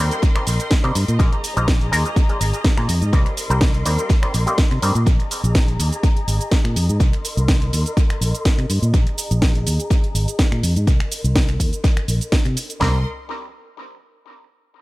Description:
filtered disco house; 124 BPM; 4/4; swing 53% on 16ths; C minor; A4 = 435 Hz
auto-wah clav; accompaniment; 0.0-4.9, 12.8-13.0 s; G3 to D5; -25 LUFS; equal; overdrive, phaser, sidechain pumping, low-pass filter, tape echo
clear symphonic string section; sustained chords; 0.0-13.0 s; Ab4 to C6; -30 LUFS; left 2 dB; sidechain pumping, low-pass filter
fingered electric bass; bass; 0.0-13.0 s; Ab1 to C3; -20 LUFS; equal; sidechain pumping, low-pass filter
house drum kit; drums; 0.1-12.8 s; finger snaps, hi-hat, shaker, snare drum; -25 LUFS; right 1 dB; sidechain pumping on hats, small room reverb, sidechain pumping on perc, sidechain pumping on cymbals, tape echo
house drum kit; drums; 0.2-12.9 s; kick drum, snare drum, toms; -17 LUFS; equal; small room reverb
digital ambience; echo-heavy mix; -16 LUFS; side -19 dB against mid
0.0-12.8 A section; 12.8-14.7 B section
filter sweep on fingered electric bass 0.0-12.8; filter sweep 0.0-12.8
0.0 Cm7; 1.2 Bb7sus4; 3.1 Cm7; 5.1 Bb7sus4; 7.0 Cm7; 8.9 Bb7sus4; 10.9 Cm7

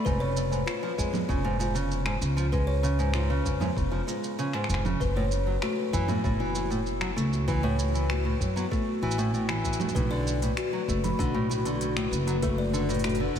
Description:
folktronica; 97 BPM; 4/4; straight; B dorian; A4 = 440 Hz
buzzing kalimba; second line; 0.0-13.1 s; B3 to B5; -32 LUFS; left 3 dB; tape echo
nylon-string guitar; arpeggios; 0.0-13.4 s; G#2 to A3; -30 LUFS; equal; ping-pong delay
upright bass; bass; 0.1-13.4 s; E#1 to F#2; -29 LUFS; equal
electronic kick drum; drums; 0.1-13.4 s; -31 LUFS; equal
organic electronic drum kit; drums; 0.1-13.4 s; congas, finger snaps, hi-hat, shaker; -35 LUFS; right 3 dB
warbly tape-like pad; sustained chords; 10.5-13.4 s; D3 to B4; -35 LUFS; left 2 dB; chorus, built-in reverb
moderate cathedral reverb, RT60 6.7 s; dreamy mix soaked in reverb; -25 LUFS; side -8 dB against mid
0.0-13.4 A section
0.1 C#/E#; 5.0 F#m7; 9.9 Bm7

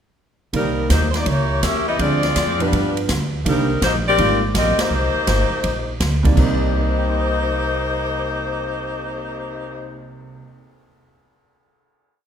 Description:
jazz, big band swing; 164 BPM; 4/4; swing 66% on 8ths; C minor; A4 = 440 Hz
clear saxophone section; melody; 0.5-10.1 s; G3 to E5; -21 LUFS; left 2 dB
clear baby grand piano; accompaniment; 0.5-11.0 s; C2 to G6; -25 LUFS; right 3 dB
upright bass; bass; 0.5-10.4 s; G1 to G2; -22 LUFS; equal
swinging big-band drum kit; drums; 0.5-9.2 s; crash cymbal, cymbal swell, hi-hat, kick drum, ride cymbal, snare drum; -23 LUFS; equal
moderate concert hall reverb, RT60 1.9 s; minimal, uncompressed stereo recording; -17 LUFS; side -8 dB against mid
0.5-6.4 A section; 6.4-9.3 final chord
band accent 4.7
0.5 Cm7; 1.3 C#dim7; 2.0 Dm7b5; 2.7 G7; 3.4 Cm7

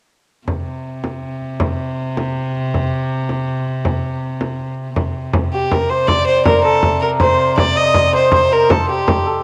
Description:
medieval dance; 107 BPM (dotted quarters); 6/8; straight; C dorian; A4 = 440 Hz
warm viola da gamba; drone; 0.5-9.4 s; C3; -25 LUFS; equal; cassette tape
frame drum; percussion; 0.5-9.2 s; -22 LUFS; equal
rich fiddle; melody; 5.5-9.4 s; G4 to Eb5; -18 LUFS; equal; cassette tape
hammered dulcimer; second line; 5.5-9.4 s; G4 to Eb5; -20 LUFS; equal; cassette tape
wet spring reverb, RT60 2.4 s; home recording on cassette; -17 LUFS; mono
0.5-5.0 A section; 5.0-9.4 B section

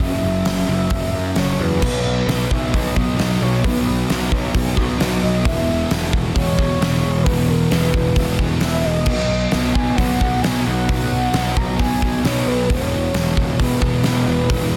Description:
rock, shoegaze and dream pop; 132 BPM; 4/4; straight; B major; A4 = 440 Hz
mellow horn-like synth lead; melody; 0.0-14.8 s; A#4 to A#5; -28 LUFS; equal; chorus, analog delay
fuzz guitar; riff; 0.0-14.8 s; E2 to B3; -23 LUFS; equal; distortion, analog chorus
fuzz picked electric bass; bass; 0.0-14.8 s; E1 to F#2; -25 LUFS; equal; overdrive
gated 80s drum kit; drums; 0.0-14.6 s; crash cymbal, hi-hat, kick drum, snare drum; -24 LUFS; equal
studio reverb; dense, heavily limited modern master; -18 LUFS; mono
0.0-1.8 A section; 1.8-14.8 B section
0.0 F#5; 1.8 B; 5.5 E5; 9.1 B5; 12.7 E5

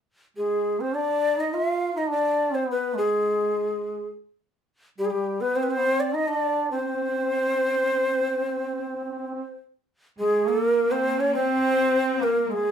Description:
Arabic maqam ensemble; 104 BPM; 4/4; straight; C maqam nahawand; A4 = 440 Hz
breathy ney; melody; 0.4-12.7 s; G4 to F5; -23 LUFS; left 1 dB
mellow duduk; second line; 0.4-12.7 s; G3 to F4; -28 LUFS; right 4 dB
rich cello; second line; 10.2-12.7 s; Ab3 to C4; -30 LUFS; left 3 dB
moderate studio ambience, RT60 0.5 s; band playing live in one room; -22 LUFS; side -8 dB against mid
0.0-10.2 A section; 10.2-12.7 B section

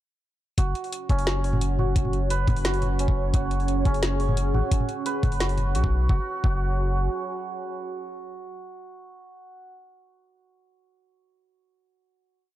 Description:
half-time drum and bass; 174 BPM; 4/4; half-time; A4 = 440 Hz
dark analog pad; sustained chords; 1.1-9.6 s; C#4 to G#5; -32 LUFS; right 2 dB; chorus, sidechain pumping
santur; arpeggios; 0.6-9.7 s; C#4 to C#5; -32 LUFS; right 3 dB; digital delay
saturated sub bass; bass; 0.6-7.1 s; F#1 to B1; -25 LUFS; equal
drum and bass drum kit; drums; 0.6-5.8 s; hi-hat, snare drum, toms; -29 LUFS; equal
electronic kick drum; drums; 0.6-6.5 s; -23 LUFS; equal
digital ambience; dark, warm production; -22 LUFS; side -14 dB against mid
0.6-6.1 drop; 6.1-8.9 final chord
drop 0.6-6.1
0.6 F#5

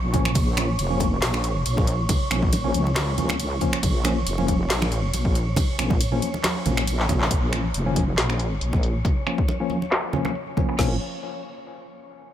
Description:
deep dubstep; 138 BPM; 4/4; swing 54% on 16ths, half-time; Bb minor; A4 = 439 Hz
wobble bass; bass; 0.0-11.0 s; F1 to Db2; -24 LUFS; equal; chorus
wind-like tuned noise texture; texture; 0.0-10.8 s; Db5; -33 LUFS; right 2 dB; built-in reverb
tine electric piano; stabs; 0.1-11.0 s; F3 to Db4; -29 LUFS; left 2 dB; medium stereo tremolo, low-pass filter, dub echo
deep house drum kit; drums; 0.1-10.9 s; crash cymbal, kick drum, snare drum; -24 LUFS; equal
deep house drum kit; drums; 0.1-10.8 s; finger snaps, handclaps, hi-hat, ride cymbal, snare drum; -27 LUFS; equal; low-pass filter on hats, low-pass filter on snare, low-pass filter on cymbals, low-pass filter on room
congas; percussion; 0.1-10.7 s; -30 LUFS; right 3 dB; dub echo
light reverb, digital ambience; -20 LUFS; side -11 dB against mid
0.0-7.3 A section; 7.3-10.8 B section; 10.8-12.3 C section
drop 0.0-7.3; drum fill 7.0-7.3; band accent 7.2; filter sweep on drum 7.3-10.8; filter sweep on tine electric piano 7.3-10.8
0.0 Bbm

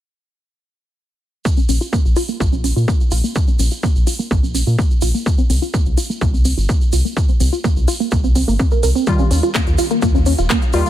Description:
melodic techno; 126 BPM; 4/4; straight; Bb dorian; A4 = 440 Hz
tight sequenced synth; arpeggios; 1.4-10.9 s; Bb3 to Bb4; -21 LUFS; equal; chorus, sidechain pumping, ping-pong delay
electronic kick drum; drums; 1.5-10.6 s; -17 LUFS; equal
tube shaker; percussion; 1.5-10.9 s; -29 LUFS; right 4 dB
round analog bass; bass; 1.7-10.8 s; Eb1 to Bb2; -17 LUFS; equal; tube saturation, sidechain pumping
techno drum kit; drums; 1.7-10.9 s; handclaps, hi-hat; -26 LUFS; equal
synth brass stab; stabs; 9.1-10.9 s; Eb3 to F4; -22 LUFS; left 2 dB; chorus, sidechain pumping, ping-pong delay
little or no reverb; -14 LUFS; side -12 dB against mid
1.5-10.9 A section
filter sweep on synth arpeggio sound 1.5-10.9
1.5 Bb5; 5.3 C5; 9.1 Ebadd9

